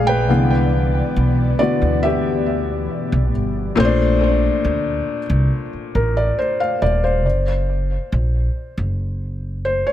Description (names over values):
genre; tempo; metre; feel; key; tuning
contemporary R&B; 69 BPM; 4/4; straight; unclear; A4 = 441 Hz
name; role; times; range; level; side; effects
felt-muted upright piano; accompaniment; 0.0-9.9 s; Bb2 to Ab5; -19 LUFS; left 2 dB; tape echo
ethereal airy pad; sustained chords; 0.0-3.7 s; B2 to D5; -26 LUFS; equal; ensemble chorus, built-in reverb
upright bass; bass; 0.0-9.8 s; Eb1 to D2; -19 LUFS; equal; none
room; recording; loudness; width
light reverb, small room ambience; echo-heavy mix; -16 LUFS; side -12 dB against mid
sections
0.0-3.8 A section; 3.8-9.9 A section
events
felt piano solo 0.0-3.8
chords
0.3 Cmaj9; 3.8 Bbmaj9; 7.2 Gb